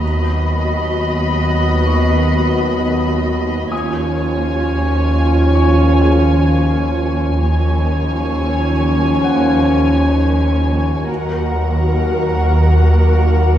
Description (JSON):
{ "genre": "cinematic, suspense film score", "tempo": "65 BPM", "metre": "4/4", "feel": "straight", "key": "unclear", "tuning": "A4 = 441 Hz", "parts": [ { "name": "muted studio violin section", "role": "melody", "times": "0.0-13.6 s", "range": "Gb5 to B5", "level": "-24 LUFS", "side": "left 3 dB", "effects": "none" }, { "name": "muted studio violin section", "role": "second line", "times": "0.0-13.6 s", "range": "Bb4 to D#5", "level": "-25 LUFS", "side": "equal", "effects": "none" }, { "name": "muted studio viola section", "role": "accompaniment", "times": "0.0-13.6 s", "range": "F3 to F#4", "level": "-24 LUFS", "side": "right 1 dB", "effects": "none" }, { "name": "warm French horn section", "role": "sustained chords", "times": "0.0-13.6 s", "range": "F3 to Db4", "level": "-20 LUFS", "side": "left 1 dB", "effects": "none" }, { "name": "muted chamber cello section", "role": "bass", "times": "0.0-13.6 s", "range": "D#2", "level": "-20 LUFS", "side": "equal", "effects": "none" }, { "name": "muted studio double bass section", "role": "bass", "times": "0.0-13.6 s", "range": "D#2", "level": "-21 LUFS", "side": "right 1 dB", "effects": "none" }, { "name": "deep rumbling drone", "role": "drone", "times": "0.0-13.6 s", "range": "D#2", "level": "-19 LUFS", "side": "equal", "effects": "built-in reverb" }, { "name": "felt-muted upright piano", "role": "texture", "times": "0.0-13.6 s", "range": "Ab4 to Eb6", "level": "-30 LUFS", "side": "left 1 dB", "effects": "none" } ], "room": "wet recital hall reverb, RT60 1.3 s", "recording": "recorded in a church or concert hall", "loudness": "-13 LUFS", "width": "side -11 dB against mid", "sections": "0.0-13.6 A section", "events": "none", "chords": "0.0 B/D#; 3.7 Db/Eb; 11.1 Ebm", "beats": "| 0.02 0.94 1.88 2.80 | 3.72 4.64 5.56 6.48 | 7.40 8.31 9.23 10.16 | 11.09 12.02 12.95" }